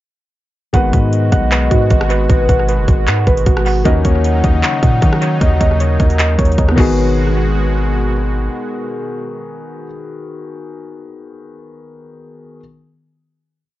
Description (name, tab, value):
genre	hip hop, trap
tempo	154 BPM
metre	4/4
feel	half-time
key	G# minor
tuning	A4 = 441 Hz
part	hollow clarinet-like synth lead	second line	0.7-8.1 s	B4 to F#5	-23 LUFS	left 2 dB	chorus, analog delay
part	warm concert grand piano	accompaniment	0.7-12.6 s	D#3 to B4	-23 LUFS	left 4 dB	low-pass filter
part	warm analog pad	sustained chords	0.7-9.9 s	B2 to F#4	-24 LUFS	equal	chorus, tremolo
part	muted felt-like synth keys	arpeggios	0.7-9.9 s	B3 to F#5	-21 LUFS	right 3 dB	chorus, low-pass filter, analog delay
part	distorted 808-style bass	bass	0.7-8.5 s	F#1 to D#3	-15 LUFS	equal	distortion
part	trap drum kit	drums	0.7-6.9 s	crash cymbal, handclaps, hi-hat, kick drum, rim click	-15 LUFS	equal	overdrive, analog delay
room	digital ambience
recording	echo-heavy mix, nothing above 7.5 kHz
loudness	-12 LUFS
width	side -15 dB against mid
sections	0.7-7.0 hook; 7.0-10.1 final hit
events	none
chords	0.7 G#m7; 3.9 D#m7; 6.8 G#m7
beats	| 0.74 1.13 1.52 1.91 | 2.30 2.69 3.08 3.46 | 3.85 4.24 4.63 5.02 | 5.41 5.80 6.19 6.58 | 6.97 7.36 7.75 8.14 | 8.53 8.92 9.31 9.70